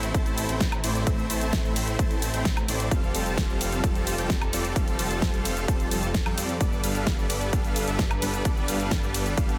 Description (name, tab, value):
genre	EDM, festival progressive house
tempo	130 BPM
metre	4/4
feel	straight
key	unclear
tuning	A4 = 436 Hz
part	rich symphonic string section	sustained chords	0.0-9.6 s	F3 to B4	-36 LUFS	equal	sidechain pumping
part	dense compressed supersaw	riff	0.0-9.6 s	G3 to A5	-33 LUFS	equal	sidechain pumping, delay
part	detuned saw bass	bass	0.0-9.6 s	F1 to F2	-33 LUFS	equal	sidechain pumping
part	big-room dance drum kit	drums	0.0-9.6 s	hi-hat, ride cymbal, shaker, snare drum, woodblock	-33 LUFS	equal	none
part	electronic kick drum	drums	0.1-9.5 s	none	-28 LUFS	equal	none
room	light reverb, digital ambience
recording	none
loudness	-26 LUFS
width	mono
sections	0.0-9.6 A section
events	none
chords	0.0 Am; 2.9 Fadd9; 6.6 Gadd9